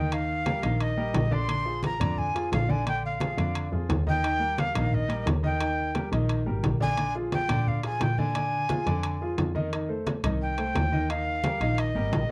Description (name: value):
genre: Afro-Cuban jazz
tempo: 175 BPM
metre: 4/4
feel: straight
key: Bb mixolydian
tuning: A4 = 440 Hz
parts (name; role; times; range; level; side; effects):
- breathy bright jazz flute; melody; 0.0-12.3 s; Eb5 to C6; -32 LUFS; equal; none
- clear concert grand piano; accompaniment; 0.0-12.3 s; D3 to Eb5; -34 LUFS; equal; none
- clear double bass; bass; 0.0-12.3 s; Ab1 to Bb2; -32 LUFS; equal; none
- congas; percussion; 0.1-12.3 s; none; -35 LUFS; equal; none
- timbales; percussion; 0.1-12.3 s; none; -37 LUFS; equal; none
room: moderate club reverb, RT60 0.5 s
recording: dark, warm production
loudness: -27 LUFS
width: mono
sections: 0.0-12.3 A section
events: none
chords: 0.1 Eb; 1.5 Bb7; 4.2 Eb; 7.0 Bb7; 9.7 F7; 11.1 Eb